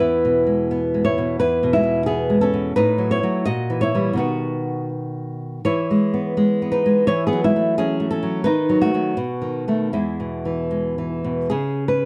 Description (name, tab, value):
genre	romantic piece for solo classical guitar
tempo	76-90 BPM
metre	2/4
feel	rubato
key	E major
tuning	A4 = 440 Hz
part	nylon-string guitar	solo	0.0-12.1 s	E2 to D#5	-21 LUFS	equal	none
room	light reverb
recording	dark, warm production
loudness	-21 LUFS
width	mono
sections	0.0-11.5 A section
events	none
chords	0.0 E; 2.8 F#m/A; 3.5 A#dim7; 4.2 B; 5.7 E; 7.1 F#m7/E; 8.5 B7/D#; 9.2 B7; 9.9 E; 11.5 C#5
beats	0.70 | 1.40 2.07 | 2.75 3.45 | 4.18 4.92 | 5.65 6.38 | 7.10 7.79 | 8.46 9.17 | 9.94 10.72 | 11.51